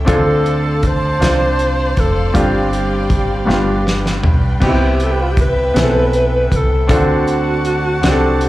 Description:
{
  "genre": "slow gospel",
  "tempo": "53 BPM (dotted quarters)",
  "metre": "6/8",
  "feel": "straight",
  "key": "unclear",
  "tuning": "A4 = 441 Hz",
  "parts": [
    { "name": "bright upright piano", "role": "accompaniment", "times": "0.0-8.5 s", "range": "G2 to C5", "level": "-18 LUFS", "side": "left 1 dB", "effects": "slapback echo" },
    { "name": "clear studio string section", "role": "sustained chords", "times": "0.0-8.5 s", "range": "B4 to A5", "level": "-27 LUFS", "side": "equal", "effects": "none" },
    { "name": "fingered electric bass", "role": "bass", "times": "0.0-8.5 s", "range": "F1 to D2", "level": "-18 LUFS", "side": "equal", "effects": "none" },
    { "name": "mellow alto saxophone", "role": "melody", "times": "0.1-8.5 s", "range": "F4 to C5", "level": "-19 LUFS", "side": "right 1 dB", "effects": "none" },
    { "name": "warm soul drum kit", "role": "drums", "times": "0.1-8.5 s", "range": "crash cymbal, hi-hat, kick drum, snare drum, toms", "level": "-18 LUFS", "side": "equal", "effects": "none" }
  ],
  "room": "light reverb, small room ambience",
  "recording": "live gig heard through the venue's PA, club reverb",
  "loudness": "-12 LUFS",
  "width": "side -16 dB against mid",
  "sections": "0.0-8.5 A section",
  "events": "drum fill 3.5-4.6",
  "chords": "0.1 Dm7; 2.3 G7sus4; 3.5 G7; 4.6 Cmaj7; 6.9 D7"
}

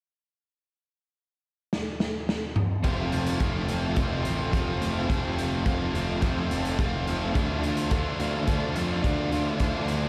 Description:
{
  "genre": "rock, shoegaze and dream pop",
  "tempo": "106 BPM",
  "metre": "4/4",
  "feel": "straight",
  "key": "F major",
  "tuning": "A4 = 444 Hz",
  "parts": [
    { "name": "raw garage drum kit", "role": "drums", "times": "1.7-10.0 s", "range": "hi-hat, kick drum, snare drum, toms", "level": "-31 LUFS", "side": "equal", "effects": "none" },
    { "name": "biting overdriven guitar", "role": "riff", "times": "2.8-10.1 s", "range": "F2 to F4", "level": "-33 LUFS", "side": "equal", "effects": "subtle chorus" },
    { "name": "crunchy overdriven guitar", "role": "riff", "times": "2.8-10.1 s", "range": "F2 to F4", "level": "-34 LUFS", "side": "equal", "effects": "reverse reverb" },
    { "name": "fuzz picked electric bass", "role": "bass", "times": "2.8-10.1 s", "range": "F1 to F2", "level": "-33 LUFS", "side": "equal", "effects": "overdrive" }
  ],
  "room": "light reverb, studio reverb",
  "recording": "none",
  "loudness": "-27 LUFS",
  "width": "mono",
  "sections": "0.6-2.8 A section; 2.8-10.1 B section",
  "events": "drum fill 1.7-2.8",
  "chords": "0.6 N.C.; 2.8 F; 7.4 Dm"
}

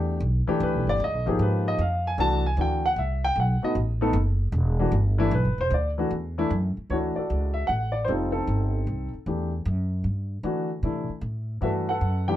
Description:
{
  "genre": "jazz piano trio",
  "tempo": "153 BPM",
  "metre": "3/4",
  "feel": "swing 67% on 8ths",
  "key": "D major from 6.9 s",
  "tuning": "A4 = 441 Hz",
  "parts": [
    { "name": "warm baby grand piano", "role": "melody", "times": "0.0-12.4 s", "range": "E3 to A5", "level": "-26 LUFS", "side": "left 1 dB", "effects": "none" },
    { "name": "upright bass", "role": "bass", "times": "0.0-12.4 s", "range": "E1 to D3", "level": "-26 LUFS", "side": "equal", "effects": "none" }
  ],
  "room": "moderate studio reverb, RT60 0.5 s",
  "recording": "dark, warm production",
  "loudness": "-23 LUFS",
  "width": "side -13 dB against mid",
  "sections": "0.0-6.9 A section; 6.9-12.4 B section",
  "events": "grand piano solo 0.0-6.9",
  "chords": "0.0 Em7; 1.0 C#7#11 (rootless); 2.2 C6; 3.4 B7; 4.5 Em7; 5.7 Dadd9; 6.9 Dmaj9; 8.1 F9; 9.3 Em; 10.4 D7sus2; 11.6 Gmaj9"
}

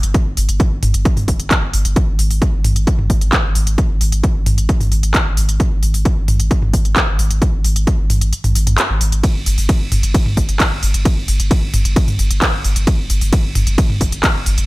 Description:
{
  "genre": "driving peak-time techno",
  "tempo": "132 BPM",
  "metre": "4/4",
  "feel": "straight",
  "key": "unclear",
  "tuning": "A4 = 443 Hz",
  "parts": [
    { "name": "saturated sub bass", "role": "bass", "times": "0.0-14.7 s", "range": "G1 to Ab1", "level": "-17 LUFS", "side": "equal", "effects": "overdrive, sidechain pumping, low-pass filter" },
    { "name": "techno drum kit", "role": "drums", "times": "0.0-14.7 s", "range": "handclaps, hi-hat, ride cymbal, toms", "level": "-19 LUFS", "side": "equal", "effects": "overdrive, studio reverb, sidechain pumping on hats, sidechain pumping on toms, sidechain pumping on cymbals" },
    { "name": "electronic kick drum", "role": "drums", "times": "0.1-14.3 s", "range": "none", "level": "-16 LUFS", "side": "equal", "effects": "overdrive, studio reverb" }
  ],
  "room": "little or no reverb",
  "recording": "none",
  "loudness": "-13 LUFS",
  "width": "side -20 dB against mid",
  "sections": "0.0-14.7 A section",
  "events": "kick drops out 8.3-9.2",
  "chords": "none"
}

